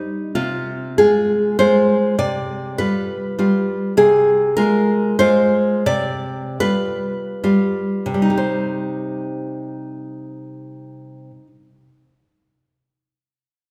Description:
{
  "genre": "romantic piece for solo classical guitar",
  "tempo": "60-102 BPM",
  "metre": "3/4",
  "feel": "rubato",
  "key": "C minor",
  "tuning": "A4 = 440 Hz",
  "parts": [
    { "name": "nylon-string guitar", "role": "solo", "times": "0.0-11.6 s", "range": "C3 to D5", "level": "-19 LUFS", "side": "equal", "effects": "none" }
  ],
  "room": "wet scoring stage reverb, RT60 1.9 s",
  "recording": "recorded in a church or concert hall",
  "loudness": "-18 LUFS",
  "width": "mono",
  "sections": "0.4-8.4 A section; 8.4-13.7 B section",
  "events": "slowing down 3.1-8.4",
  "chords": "0.4 Fm/C; 2.2 G7/C; 4.0 Fm/C; 5.9 G7/C; 8.4 Cm",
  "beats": "| 0.36 0.99 1.59 | 2.19 2.78 3.37 | 3.96 4.57 5.20 | 5.86 6.60 7.44 | 8.38 9.27 10.14 | 11.03"
}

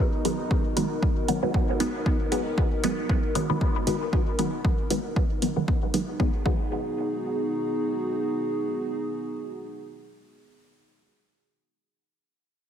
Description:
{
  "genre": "dub techno",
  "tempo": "116 BPM",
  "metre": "4/4",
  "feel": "swing 55% on 16ths",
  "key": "G# minor",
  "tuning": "A4 = 440 Hz",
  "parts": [
    { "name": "dark analog pad", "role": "sustained chords", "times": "0.0-10.9 s", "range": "B3 to A#4", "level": "-30 LUFS", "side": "equal", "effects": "chorus, sidechain pumping" },
    { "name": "bubbling stepped-filter texture", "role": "texture", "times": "0.0-6.2 s", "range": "D#4", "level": "-41 LUFS", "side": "right 4 dB", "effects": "chorus, built-in reverb, sidechain pumping" },
    { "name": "filtered dub chord stab", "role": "stabs", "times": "0.2-11.2 s", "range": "D#3 to B3", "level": "-28 LUFS", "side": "equal", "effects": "phaser, sidechain pumping, dub echo" },
    { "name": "electronic hi-hat", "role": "drums", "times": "0.2-6.1 s", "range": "none", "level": "-35 LUFS", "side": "right 2 dB", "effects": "overdrive, studio reverb" },
    { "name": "electronic kick drum", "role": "drums", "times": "0.5-6.6 s", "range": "none", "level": "-25 LUFS", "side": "equal", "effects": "overdrive, studio reverb" }
  ],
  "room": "moderate lush hall reverb, RT60 2.0 s",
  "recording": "heavily compressed radio sound",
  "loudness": "-24 LUFS",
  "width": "side -9 dB against mid",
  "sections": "0.0-6.2 A section; 6.2-10.3 B section",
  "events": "none",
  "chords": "0.0 G#m7",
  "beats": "0.51 1.02 1.54 | 2.06 2.58 3.09 3.61 | 4.13 4.65 5.16 5.68 | 6.20 6.71 7.23 7.75 | 8.27 8.78 9.30 9.82"
}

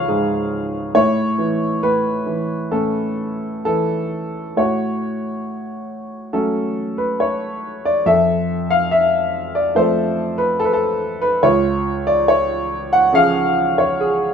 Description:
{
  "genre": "classical, lyrical solo piano",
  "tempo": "70 BPM",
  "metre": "4/4",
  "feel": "rubato",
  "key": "A major",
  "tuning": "A4 = 439 Hz",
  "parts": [
    { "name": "warm concert grand piano", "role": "solo", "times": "0.0-14.3 s", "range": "C#2 to F#5", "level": "-16 LUFS", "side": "equal", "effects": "none" }
  ],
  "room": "moderate studio reverb, RT60 0.7 s",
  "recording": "minimal, uncompressed stereo recording",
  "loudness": "-16 LUFS",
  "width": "side -7 dB against mid",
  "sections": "0.0-4.6 A section; 4.6-14.3 B section",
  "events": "none",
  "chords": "0.0 C#; 0.9 Aadd9; 4.6 A6; 8.1 F; 11.4 C#",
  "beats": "0.09 | 0.95 1.82 2.72 3.66 | 4.57 5.45 6.33 7.20 | 8.06 8.91 9.75 10.59 | 11.43 12.28 13.13 13.98"
}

